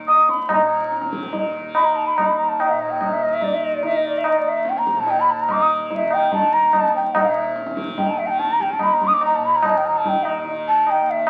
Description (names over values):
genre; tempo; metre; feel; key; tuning
indian classical, Hindustani; 145 BPM; 4/4; straight; Eb raga puriya dhanashri; A4 = 439 Hz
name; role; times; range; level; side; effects
tanpura; drone; 0.0-11.3 s; Eb2 to Eb3; -34 LUFS; equal; none
mellow hollow bansuri; melody; 0.1-11.3 s; D5 to Eb6; -20 LUFS; equal; none
tabla; percussion; 0.1-11.3 s; none; -25 LUFS; equal; none
room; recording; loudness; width
wet large studio reverb, RT60 0.9 s; very old 78 rpm record, vinyl crackle; -19 LUFS; mono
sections
0.5-11.3 A section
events
none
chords
none